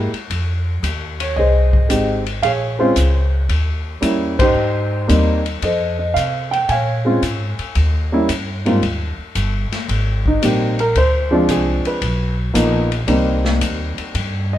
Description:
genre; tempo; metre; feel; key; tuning
jazz piano trio; 112 BPM; 4/4; swing 69% on 8ths; Ab major; A4 = 435 Hz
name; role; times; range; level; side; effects
dark grand piano; melody; 0.0-14.6 s; Ab2 to Ab5; -18 LUFS; equal; none
upright bass; bass; 0.0-14.6 s; G1 to C3; -19 LUFS; equal; none
open jazz drum kit; drums; 0.1-14.3 s; hi-hat, kick drum, ride cymbal, snare drum; -24 LUFS; left 2 dB; none
room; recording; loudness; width
moderate large studio reverb, RT60 1.2 s; minimal, uncompressed stereo recording; -15 LUFS; side -12 dB against mid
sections
0.0-8.8 A section; 8.8-14.6 B section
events
band accent 4.3; grand piano solo 8.8-14.6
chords
0.3 Fm7; 2.4 Bbm9; 3.5 Eb7b9; 4.6 Abmaj9; 5.6 F; 6.7 Bbm7; 7.8 Eb; 8.8 Abmaj7sus2; 11.0 Dm7b5; 12.0 Bmaj7#11; 13.1 Cm7

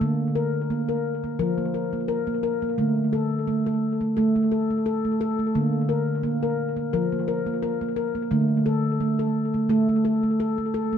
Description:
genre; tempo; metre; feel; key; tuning
world meditative, meditative tuned percussion; 87 BPM; 4/4; swing 54% on 16ths; D minor; A4 = 440 Hz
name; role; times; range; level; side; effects
handpan; solo; 0.0-11.0 s; D3 to Bb4; -22 LUFS; equal; analog delay
room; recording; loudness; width
wet plate reverb, RT60 2.6 s; echo-heavy mix; -22 LUFS; side -8 dB against mid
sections
0.0-11.0 A section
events
none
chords
0.0 Bb/D; 2.8 D5; 5.6 Bb/D; 8.3 D5

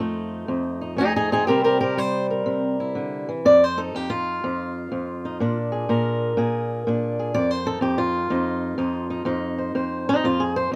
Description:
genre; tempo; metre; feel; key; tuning
acoustic country blues, solo or duo; 123 BPM; 4/4; swing 66% on 8ths; unclear; A4 = 440 Hz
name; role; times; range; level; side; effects
fingerpicked swing-style acoustic guitar; solo; 0.0-10.8 s; F2 to D5; -23 LUFS; equal; none
room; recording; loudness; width
light reverb; none; -23 LUFS; mono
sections
0.0-3.4 A section; 3.4-10.8 A section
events
steel-string acoustic guitar solo 0.0-3.4, 3.4-10.8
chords
0.0 F7; 1.5 C7; 3.4 F7(no3); 5.4 Bb7; 7.4 F5

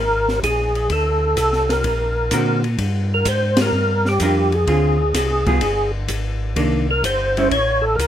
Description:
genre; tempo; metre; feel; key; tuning
soul jazz organ trio; 127 BPM; 4/4; swing 69% on 8ths; unclear; A4 = 440 Hz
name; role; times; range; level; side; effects
percussive tonewheel organ; melody; 0.0-8.1 s; G4 to C#5; -19 LUFS; equal; slow rotary speaker, chorus vibrato
mellow tonewheel organ; bass; 0.0-8.1 s; G1 to Bb2; -22 LUFS; equal; slow rotary speaker
open jazz drum kit; drums; 0.3-8.1 s; hi-hat, kick drum, ride cymbal, snare drum; -25 LUFS; left 2 dB; none
vintage hollow-body jazz guitar; accompaniment; 2.3-7.5 s; D3 to Bb4; -20 LUFS; right 2 dB; none
room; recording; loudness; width
little or no reverb; close, detailed microphones; -16 LUFS; side -10 dB against mid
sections
0.0-8.1 A section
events
band accent 3.5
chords
0.0 Fmadd11 (rootless); 0.9 D7b13; 2.8 Gm7; 4.7 Dm7b5; 5.6 N.C.; 6.6 Cm9; 7.5 A

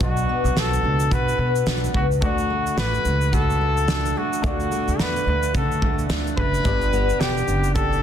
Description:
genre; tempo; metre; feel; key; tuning
acoustic pop; 108 BPM; 4/4; swing 60% on 16ths; D major; A4 = 441 Hz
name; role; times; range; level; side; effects
warm trumpet; melody; 0.0-8.0 s; F#4 to B4; -24 LUFS; left 1 dB; ping-pong delay
bright upright piano; accompaniment; 0.0-8.0 s; A3 to D5; -33 LUFS; left 7 dB; none
fingerpicked steel-string acoustic guitar; accompaniment; 0.0-8.0 s; B2 to G4; -28 LUFS; left 1 dB; none
upright bass; bass; 0.0-8.0 s; E1 to D3; -24 LUFS; equal; none
loose indie drum kit; drums; 0.0-8.0 s; kick drum, shaker, snare drum; -25 LUFS; equal; none
room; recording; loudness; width
light reverb; dense, heavily limited modern master; -19 LUFS; side -9 dB against mid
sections
0.0-8.0 A section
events
none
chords
0.0 Bm; 2.2 D; 6.7 G

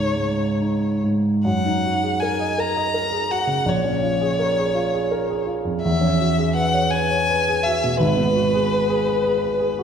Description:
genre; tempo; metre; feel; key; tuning
classical, impressionist duo for violin and grand piano; 55 BPM (dotted quarters); 6/8; uneven beats, rubato; F# major; A4 = 441 Hz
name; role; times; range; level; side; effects
rich violin; melody; 0.0-9.8 s; B4 to A#5; -22 LUFS; left 2 dB; none
warm concert grand piano; accompaniment; 0.0-9.8 s; G#1 to D#5; -20 LUFS; right 1 dB; none
room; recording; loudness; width
wet scoring stage reverb, RT60 1.6 s; heard from further back in the room; -18 LUFS; side -7 dB against mid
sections
0.0-1.4 A section; 1.4-9.8 B section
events
none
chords
0.0 C#sus2; 1.4 F#69; 3.7 A#m7; 5.8 E69; 8.0 G#m7

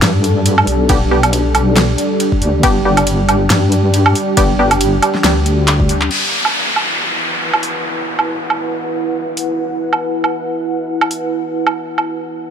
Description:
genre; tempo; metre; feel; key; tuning
deep dubstep; 138 BPM; 4/4; swing 56% on 16ths, half-time; E minor; A4 = 437 Hz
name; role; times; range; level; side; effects
dark analog pad; sustained chords; 0.0-12.5 s; G3 to F#5; -18 LUFS; right 1 dB; chorus
deep soft wobble bass; bass; 0.0-6.1 s; G1 to G2; -15 LUFS; left 1 dB; chorus
deep house drum kit; drums; 0.0-12.1 s; crash cymbal, handclaps, hi-hat, ride cymbal, snare drum, woodblock; -17 LUFS; right 2 dB; none
filtered dub chord stab; stabs; 0.9-4.7 s; B3 to G4; -20 LUFS; left 1 dB; chorus, dub echo
electronic kick drum; drums; 0.9-5.9 s; none; -16 LUFS; left 1 dB; none
downlifter; sound effects; 6.1-9.6 s; none; -19 LUFS; equal; none
room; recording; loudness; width
light reverb; none; -12 LUFS; side -8 dB against mid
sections
0.0-6.1 A section; 6.1-12.5 B section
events
drop 0.0-6.1; drum fill 5.7-6.1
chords
0.0 G; 6.1 E5

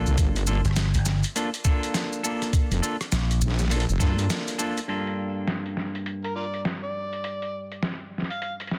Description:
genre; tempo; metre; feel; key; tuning
glitch hop; 102 BPM; 4/4; swing 62% on 16ths; G minor; A4 = 440 Hz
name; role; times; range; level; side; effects
semi-hollow electric guitar; stabs; 0.0-8.8 s; G2 to A4; -33 LUFS; equal; sidechain pumping, digital delay
vintage slap bass; bass; 0.0-3.4 s; G1 to Bb1; -25 LUFS; equal; none
wobble bass; bass; 0.1-4.3 s; F1 to G2; -26 LUFS; equal; chorus, tube saturation
maracas; percussion; 0.1-4.9 s; none; -37 LUFS; equal; none
boom bap sampler-style drum kit; drums; 0.2-8.8 s; hi-hat, rim click, snare drum; -33 LUFS; equal; low-pass filter on snare, low-pass filter on hats
electronic kick drum; drums; 0.2-4.1 s; none; -25 LUFS; equal; none
overdriven harmonica; melody; 6.2-8.5 s; F4 to F5; -35 LUFS; equal; none
room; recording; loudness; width
little or no reverb; dense, heavily limited modern master; -26 LUFS; mono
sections
0.0-4.9 A section; 4.9-8.8 B section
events
drop 0.0-4.9; break 4.3-4.9; band accent 4.3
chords
0.0 Gm7

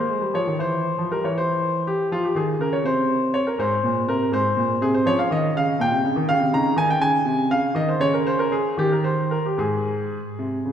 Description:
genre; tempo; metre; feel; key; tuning
classical, baroque-style suite movement for grand piano; 73-83 BPM (dotted quarters); 6/8; rubato; F minor; A4 = 441 Hz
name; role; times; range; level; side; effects
clear grand piano; solo; 0.0-10.7 s; Ab2 to Bb5; -19 LUFS; equal; none
room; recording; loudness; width
wet concert hall reverb, RT60 1.9 s; heard from further back in the room; -19 LUFS; side -9 dB against mid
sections
0.0-10.7 A section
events
none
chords
0.0 Fm; 0.6 C/E; 2.1 F5; 3.6 Abadd9; 5.1 Db; 6.5 Dbsus2; 7.2 Dbmaj9/C; 8.0 N.C.; 9.6 Ab

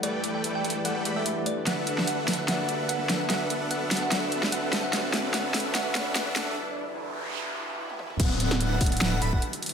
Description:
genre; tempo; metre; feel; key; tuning
future bass; 147 BPM; 4/4; swing 54% on 16ths, half-time; D major; A4 = 440 Hz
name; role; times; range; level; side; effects
thumb-piano-like synth pluck; melody; 0.0-6.5 s; D5 to G5; -34 LUFS; equal; chorus, phaser, sidechain pumping, tape echo
mellow tine electric piano; accompaniment; 0.0-8.2 s; D3 to F#5; -35 LUFS; right 1 dB; sidechain pumping, ping-pong delay
shimmering ambient pad; sustained chords; 0.0-9.7 s; D3 to G4; -39 LUFS; left 1 dB; chorus, built-in reverb, phaser, sidechain pumping
supersaw chords; riff; 0.0-9.4 s; A3 to B5; -32 LUFS; equal; sidechain pumping, low-pass filter
big-room dance drum kit; drums; 0.0-9.7 s; crash cymbal, hi-hat, snare drum, toms; -28 LUFS; equal; overdrive, studio ambience
riser, noise sweep and downlifter; sound effects; 0.0-9.7 s; none; -35 LUFS; right 1 dB; none
airy dreamy lead; arpeggios; 8.2-9.4 s; F#5 to B5; -34 LUFS; right 1 dB; chorus, sidechain pumping, ping-pong delay
saturated sub bass; bass; 8.2-9.4 s; D1; -28 LUFS; equal; sidechain pumping
electronic kick drum; drums; 8.2-9.4 s; none; -25 LUFS; equal; studio ambience
room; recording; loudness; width
moderate digital room reverb, RT60 1.2 s; high-pass filter; -25 LUFS; side -7 dB against mid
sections
0.0-8.2 A section; 8.2-9.7 B section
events
build-up 0.0-8.2; riser 0.0-6.6; filter sweep on ambient pad 0.0-8.2; drum fill 1.7-6.6, 7.9-8.2; break 6.6-8.2; noise sweep 6.6-8.2; drop 8.2-9.7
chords
0.0 A7sus4; 1.7 D6; 4.7 Em7; 8.2 D6

